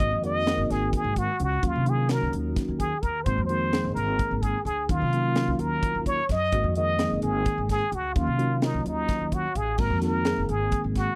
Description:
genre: electric jazz fusion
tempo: 257 BPM (eighths)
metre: 7/8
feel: straight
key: unclear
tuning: A4 = 439 Hz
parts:
  - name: trumpet with plunger mute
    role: melody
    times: 0.0-11.2 s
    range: Eb4 to Eb5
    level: -30 LUFS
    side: equal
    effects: none
  - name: tine electric piano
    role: accompaniment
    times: 0.0-11.1 s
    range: Eb3 to F5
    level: -32 LUFS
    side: equal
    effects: phaser
  - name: upright bass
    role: bass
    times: 0.0-11.0 s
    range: Gb1 to C3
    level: -31 LUFS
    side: equal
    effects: none
  - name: crisp fusion drum kit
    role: drums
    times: 0.0-11.1 s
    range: crash cymbal, hi-hat, kick drum, snare drum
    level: -31 LUFS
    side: equal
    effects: none
room: little or no reverb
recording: dry, close 1970s-style studio recording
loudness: -26 LUFS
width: mono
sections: 0.0-9.8 A section; 9.8-11.2 A section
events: tine electric piano fill 9.1-9.8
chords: 0.0 Ab9; 1.6 Ebm9; 3.3 Ab9; 4.9 Ebm9; 6.5 Ab9; 8.2 Ebm9; 9.8 Ab9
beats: | 0.00 0.23 0.47 0.70 0.93 1.17 1.40 | 1.63 1.86 2.10 2.33 2.56 2.80 3.03 | 3.26 3.50 3.73 3.96 4.19 4.43 4.66 | 4.89 5.13 5.36 5.59 5.83 6.06 6.29 | 6.53 6.76 6.99 7.22 7.46 7.69 7.92 | 8.16 8.39 8.62 8.86 9.09 9.32 9.56 | 9.79 10.02 10.26 10.49 10.72 10.96

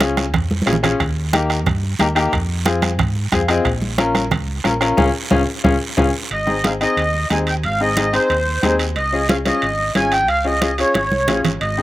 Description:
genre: latin, cumbia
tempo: 181 BPM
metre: 4/4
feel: straight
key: unclear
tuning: A4 = 435 Hz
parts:
  - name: bright upright piano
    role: accompaniment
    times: 0.0-11.8 s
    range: Bb3 to F5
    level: -20 LUFS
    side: left 3 dB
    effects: none
  - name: fingered electric bass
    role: bass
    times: 0.0-11.8 s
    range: Ab1 to Ab2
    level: -23 LUFS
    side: right 1 dB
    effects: none
  - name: bombo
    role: percussion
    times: 0.0-6.1 s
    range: none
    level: -23 LUFS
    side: right 2 dB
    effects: none
  - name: congas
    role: percussion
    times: 0.0-11.8 s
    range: none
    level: -21 LUFS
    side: right 1 dB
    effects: none
  - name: guiro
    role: percussion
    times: 0.0-11.8 s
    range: none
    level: -31 LUFS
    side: right 5 dB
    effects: none
  - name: timbales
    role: percussion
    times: 0.0-11.8 s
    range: none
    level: -27 LUFS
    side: right 4 dB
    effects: slapback echo
  - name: accordion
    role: melody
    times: 6.3-11.8 s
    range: C5 to Ab5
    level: -19 LUFS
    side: right 1 dB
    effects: light tremolo tuning, slapback echo
room: little or no reverb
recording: recorded outdoors, with no room sound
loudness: -15 LUFS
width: side -15 dB against mid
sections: 0.0-6.3 A section; 6.3-11.8 B section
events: drum fill 0.5-1.0, 5.3-6.3, 11.0-11.6; upright piano fill 3.2-3.7; band accent 5.0-6.3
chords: 0.0 Db; 1.0 Eb; 2.3 Fm; 3.7 Bbm; 5.0 Db; 6.3 Ab; 9.0 Db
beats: 0.01 0.34 0.67 | 1.00 1.33 1.66 2.00 | 2.33 2.66 2.99 3.32 | 3.65 3.99 4.32 4.65 | 4.98 5.31 5.64 5.98 | 6.31 6.64 6.97 7.30 | 7.64 7.97 8.30 8.63 | 8.96 9.29 9.63 9.96 | 10.29 10.62 10.95 11.29 | 11.62

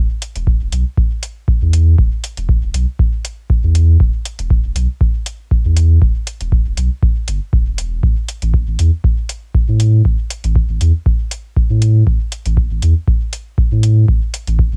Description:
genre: dub techno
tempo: 119 BPM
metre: 4/4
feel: swing 54% on 16ths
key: unclear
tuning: A4 = 439 Hz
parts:
  - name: warm sub bass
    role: bass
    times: 0.0-14.8 s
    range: E1 to A2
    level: -16 LUFS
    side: equal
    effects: sidechain pumping
  - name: electronic hi-hat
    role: drums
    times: 0.2-14.6 s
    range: none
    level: -27 LUFS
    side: equal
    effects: cassette tape
  - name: electronic kick drum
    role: drums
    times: 0.5-14.7 s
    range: none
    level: -17 LUFS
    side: equal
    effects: cassette tape
room: little or no reverb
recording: home recording on cassette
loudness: -15 LUFS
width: mono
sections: 0.0-14.8 A section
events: none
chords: none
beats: 0.47 0.98 1.48 | 1.99 2.49 2.99 3.50 | 4.00 4.51 5.01 5.51 | 6.02 6.52 7.03 7.53 | 8.04 8.54 9.04 9.55 | 10.05 10.56 11.06 11.56 | 12.07 12.57 13.08 13.58 | 14.09 14.59

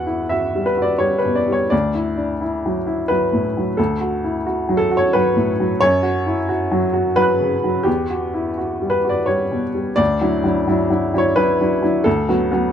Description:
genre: neoclassical minimalist piano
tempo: 87 BPM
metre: 3/4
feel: rubato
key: D major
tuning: A4 = 439 Hz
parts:
  - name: warm upright piano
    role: solo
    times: 0.0-12.7 s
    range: D2 to F#6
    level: -16 LUFS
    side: equal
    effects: none
room: light reverb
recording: close, detailed microphones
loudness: -16 LUFS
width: side -8 dB against mid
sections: 0.0-10.0 A section; 10.0-12.7 A section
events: none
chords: 0.0 Emadd9; 1.7 Dadd9; 5.8 F#sus4; 7.9 Emadd9; 10.0 Dadd9; 12.1 Bm7/D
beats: 0.30 1.01 | 1.72 2.42 3.10 | 3.78 4.46 5.13 | 5.80 6.48 7.17 | 7.86 8.57 9.29 | 10.00 10.69 11.38 | 12.06

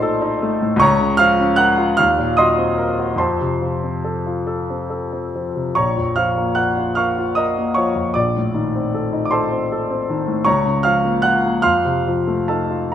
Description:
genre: classical, romantic nocturne for solo piano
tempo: 44-53 BPM (dotted quarters)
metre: 6/8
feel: rubato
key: Bb minor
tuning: A4 = 441 Hz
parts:
  - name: clear grand piano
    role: solo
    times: 0.0-12.9 s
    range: Bb1 to Gb6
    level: -16 LUFS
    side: equal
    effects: none
room: wet recital hall reverb, RT60 1.3 s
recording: none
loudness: -16 LUFS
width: side -10 dB against mid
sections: 0.0-12.9 A section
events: none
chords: 0.0 Adim/Bb; 0.8 Bbm/Db; 2.0 Cm7b5/Eb; 3.2 F; 5.8 Bbm; 8.1 Adim/Bb; 10.5 Bbm/Db; 11.6 F7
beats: | 0.79 1.98 | 3.19 4.47 | 5.75 6.97 | 8.14 9.32 | 10.46 11.64 | 12.93

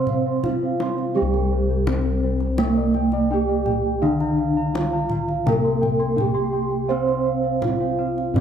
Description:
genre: Javanese gamelan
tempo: 84 BPM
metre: 4/4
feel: straight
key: C slendro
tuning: A4 = 439 Hz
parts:
  - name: gamelan-type bronze metallophone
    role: melody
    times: 0.0-8.4 s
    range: Bb3-40c to C5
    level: -24 LUFS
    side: right 1 dB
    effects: none
  - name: gamelan-type bronze metallophone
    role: accompaniment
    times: 0.0-8.4 s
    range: D3+40c to C4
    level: -26 LUFS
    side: right 3 dB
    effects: none
  - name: gamelan-type bossed gongs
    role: arpeggios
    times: 0.0-8.4 s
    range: Bb4-40c to C6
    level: -30 LUFS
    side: left 2 dB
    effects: none
  - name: gamelan-type bronze metallophone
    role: arpeggios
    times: 0.0-8.4 s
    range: Bb4-40c to C6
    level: -31 LUFS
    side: right 8 dB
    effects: none
  - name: gamelan-type bossed gongs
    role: bass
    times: 0.0-8.4 s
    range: C2 to C5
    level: -25 LUFS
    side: left 2 dB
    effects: none
  - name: kendang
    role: percussion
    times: 0.1-8.4 s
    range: none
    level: -29 LUFS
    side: equal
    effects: none
room: light reverb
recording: close, detailed microphones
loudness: -19 LUFS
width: side -8 dB against mid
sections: 0.0-1.2 A section; 1.2-8.4 B section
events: none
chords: none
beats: 0.44 | 1.17 1.88 2.60 3.31 | 4.03 4.75 5.46 6.18 | 6.90 7.62 8.36

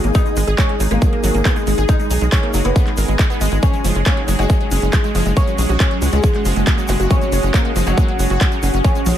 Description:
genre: psychedelic trance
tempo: 138 BPM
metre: 4/4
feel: straight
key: unclear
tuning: A4 = 440 Hz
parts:
  - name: oud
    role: melody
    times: 0.0-9.1 s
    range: F#3 to D#4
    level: -24 LUFS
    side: equal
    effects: phaser, sidechain pumping, digital delay
  - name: pulsing gated texture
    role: sustained chords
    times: 0.0-9.2 s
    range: G#3 to G#4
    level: -26 LUFS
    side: left 1 dB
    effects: chorus, built-in reverb, sidechain pumping
  - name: wide unison pluck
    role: riff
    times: 0.0-9.1 s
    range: E#3 to A#4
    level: -24 LUFS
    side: equal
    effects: auto-pan, cassette tape, sidechain pumping, dub echo
  - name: tight sequencer bass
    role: bass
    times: 0.0-9.1 s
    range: F#1 to C#2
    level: -17 LUFS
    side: equal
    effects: none
  - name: big-room dance drum kit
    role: drums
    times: 0.0-9.1 s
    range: handclaps, hi-hat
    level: -25 LUFS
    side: right 1 dB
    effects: overdrive, studio reverb
  - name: egg shaker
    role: percussion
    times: 0.0-9.1 s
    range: none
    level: -33 LUFS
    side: left 4 dB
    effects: none
  - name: granular cloud pad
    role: texture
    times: 0.0-9.2 s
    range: C#4 to D#6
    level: -26 LUFS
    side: equal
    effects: built-in reverb, sidechain pumping
  - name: electronic kick drum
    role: drums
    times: 0.1-8.9 s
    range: none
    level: -16 LUFS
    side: equal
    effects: overdrive, studio reverb
  - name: zap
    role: sound effects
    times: 6.9-7.0 s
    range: none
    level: -28 LUFS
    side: equal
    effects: none
room: little or no reverb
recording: none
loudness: -14 LUFS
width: side -11 dB against mid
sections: 0.0-9.2 A section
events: none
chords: 0.0 G#5; 3.6 F#5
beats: | 0.15 0.58 1.02 1.45 | 1.89 2.32 2.76 3.19 | 3.63 4.06 4.50 4.93 | 5.37 5.80 6.24 6.67 | 7.11 7.54 7.97 8.41 | 8.85

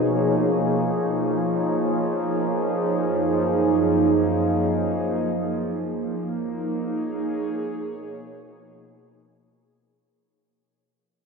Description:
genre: ambient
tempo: free time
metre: none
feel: none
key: unclear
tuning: A4 = 440 Hz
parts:
  - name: warbly tape-like pad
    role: solo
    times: 0.0-10.0 s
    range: Gb2 to Db5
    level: -21 LUFS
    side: right 1 dB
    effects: chorus, built-in reverb, phaser, ping-pong delay
room: wet huge ambient reverb, RT60 7.6 s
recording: none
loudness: -21 LUFS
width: side -4 dB against mid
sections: 0.0-10.0 A section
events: fade-out 3.7-10.0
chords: 0.0 Bmaj7; 0.6 Bbm7; 3.0 Gbmaj9; 5.3 Absus24; 7.6 Bmaj7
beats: free time

